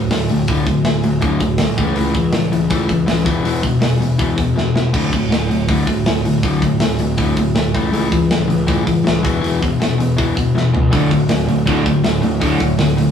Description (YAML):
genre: punk rock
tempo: 161 BPM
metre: 4/4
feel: straight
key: unclear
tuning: A4 = 440 Hz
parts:
  - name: overdriven electric guitar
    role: riff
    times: 0.0-13.1 s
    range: D2 to A3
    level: -16 LUFS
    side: left 2 dB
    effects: none
  - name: fuzz picked electric bass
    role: bass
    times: 0.0-13.1 s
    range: D1 to C#2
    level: -21 LUFS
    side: equal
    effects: overdrive
  - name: tight metal drum kit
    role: drums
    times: 0.1-13.1 s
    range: crash cymbal, hi-hat, kick drum, snare drum, toms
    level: -20 LUFS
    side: equal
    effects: none
  - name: crunchy overdriven guitar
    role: riff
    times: 10.9-13.1 s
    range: D2 to D3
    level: -18 LUFS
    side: right 4 dB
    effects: none
room: light reverb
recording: rough rehearsal-room recording, studio reverb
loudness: -14 LUFS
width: side -8 dB against mid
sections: 0.0-13.1 A section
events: drum fill 4.6-4.9, 10.5-10.9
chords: 0.0 D5; 1.8 A/C#; 3.3 E5; 4.9 D5; 7.7 A/C#; 9.2 E5; 10.9 D5